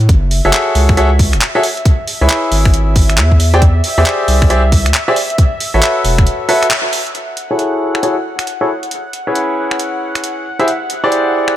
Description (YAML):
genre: UK garage, two-step garage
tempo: 136 BPM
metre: 4/4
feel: swing 63% on 16ths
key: F# minor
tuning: A4 = 439 Hz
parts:
  - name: saturated sub bass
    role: bass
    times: 0.0-6.3 s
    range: E1 to A2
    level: -12 LUFS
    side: equal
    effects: none
  - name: breakbeat sampler-style drum kit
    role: drums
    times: 0.0-11.5 s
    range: finger snaps, handclaps, hi-hat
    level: -18 LUFS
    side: right 1 dB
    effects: none
  - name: warm analog pad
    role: sustained chords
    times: 0.1-11.6 s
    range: E5 to F#5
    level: -24 LUFS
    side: left 1 dB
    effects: chorus, vintage 12-bit sampler grit, sidechain pumping
  - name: electronic kick drum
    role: drums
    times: 0.1-6.2 s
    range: none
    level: -11 LUFS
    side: equal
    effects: none
  - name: bright grand piano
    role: stabs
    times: 0.4-11.5 s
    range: C#4 to G5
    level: -15 LUFS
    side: equal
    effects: low-pass filter, digital delay
room: light reverb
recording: none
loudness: -11 LUFS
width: side -13 dB against mid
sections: 0.0-7.1 A section; 7.1-11.6 B section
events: band accent 6.7; filter sweep on grand piano 7.1-11.6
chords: 0.1 F#m9; 1.9 C#m7; 3.4 E7alt; 5.4 A69; 7.1 F#m9; 8.9 C#m7; 10.5 E7alt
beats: | 0.09 0.53 0.97 1.41 | 1.85 2.30 2.74 3.18 | 3.62 4.06 4.50 4.94 | 5.38 5.83 6.27 6.71 | 7.15 7.59 8.03 8.47 | 8.91 9.35 9.80 10.24 | 10.68 11.12 11.56